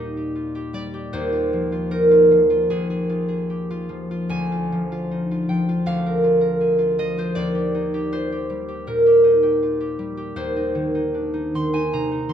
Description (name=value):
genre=classical, solo harp piece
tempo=78 BPM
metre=4/4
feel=uneven beats, rubato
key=Eb major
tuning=A4 = 439 Hz
part: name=concert harp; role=solo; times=0.0-12.3 s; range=D2 to C6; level=-18 LUFS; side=equal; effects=none
room=light reverb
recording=close, detailed microphones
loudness=-18 LUFS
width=side -9 dB against mid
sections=0.0-12.3 A section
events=none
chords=0.0 Eb; 1.1 Fm7/Eb; 4.3 Bb/D; 7.4 Eb; 10.4 Ab/Eb